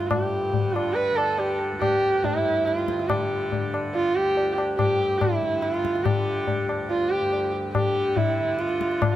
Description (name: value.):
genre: indian classical, Hindustani.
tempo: 142 BPM.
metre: 7/4.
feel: straight.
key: unclear.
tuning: A4 = 440 Hz.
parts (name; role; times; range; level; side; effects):
dark sarangi; melody; 0.0-9.2 s; E4-23c to B4; -23 LUFS; right 1 dB; tape echo.
tanpura; drone; 0.0-9.2 s; D2 to D3; -32 LUFS; equal; none.
tabla; percussion; 0.0-9.2 s; none; -27 LUFS; left 4 dB; none.
room: light reverb.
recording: none.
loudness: -21 LUFS.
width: side -12 dB against mid.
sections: 0.0-9.0 A section.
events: none.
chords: none.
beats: | 0.11 0.54 0.96 1.39 1.81 2.24 2.66 | 3.09 3.51 3.94 4.36 4.78 5.21 5.63 | 6.05 6.47 6.90 7.32 7.74 8.16 8.58 | 9.01.